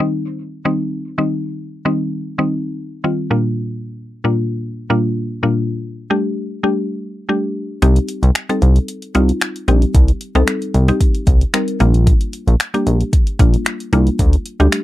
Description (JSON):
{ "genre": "dance-pop", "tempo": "113 BPM", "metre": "4/4", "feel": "straight", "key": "G minor", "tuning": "A4 = 438 Hz", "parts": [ { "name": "mallet-like synth pluck", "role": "accompaniment", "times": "0.0-14.8 s", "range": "Bb2 to Bb4", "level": "-19 LUFS", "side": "left 1 dB", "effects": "chorus" }, { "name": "chorused synth bass", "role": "bass", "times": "7.8-14.7 s", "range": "Bb1 to D2", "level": "-12 LUFS", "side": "equal", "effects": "sidechain pumping" }, { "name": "deep house drum kit", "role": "drums", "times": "7.8-14.8 s", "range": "finger snaps, hi-hat, kick drum", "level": "-15 LUFS", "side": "equal", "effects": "none" } ], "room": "light reverb", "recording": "dry, close 1970s-style studio recording", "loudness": "-15 LUFS", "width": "side -15 dB against mid", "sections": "0.0-14.8 A section", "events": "none", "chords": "0.0 Cm; 3.3 Gm7/Bb; 5.7 Dsus4; 7.8 Cm; 11.8 Gm7/Bb; 14.2 Dsus4", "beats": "0.39 0.92 | 1.45 1.98 2.51 3.04 | 3.57 4.10 4.63 5.17 | 5.70 6.23 6.76 7.29 | 7.82 8.35 8.88 9.41 | 9.95 10.48 11.01 11.54 | 12.07 12.60 13.13 13.66 | 14.19 14.72" }